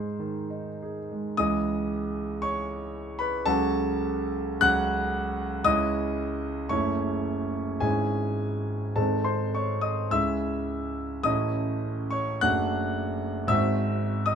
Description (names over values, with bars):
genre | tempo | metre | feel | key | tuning
classical, romantic character piece for solo piano | 47-59 BPM | 2/4 | rubato | C# minor | A4 = 440 Hz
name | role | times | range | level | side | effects
clear concert grand piano | solo | 0.0-14.3 s | F#1 to F#6 | -25 LUFS | equal | none
room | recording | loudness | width
light reverb | minimal, uncompressed stereo recording | -25 LUFS | side -7 dB against mid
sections
0.0-1.4 A section; 1.4-14.3 B section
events
none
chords
0.0 G#; 1.4 C#m; 3.5 F#m/C#; 5.7 C#m; 6.7 F#m7; 7.8 C#m/G#; 9.0 G#; 10.1 C#m; 11.3 A; 12.4 D/F#; 13.5 G#7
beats
0.16 | 1.37 2.43 | 3.48 4.62 | 5.66 6.72 | 7.84 8.98 | 10.12 11.26 | 12.43 13.51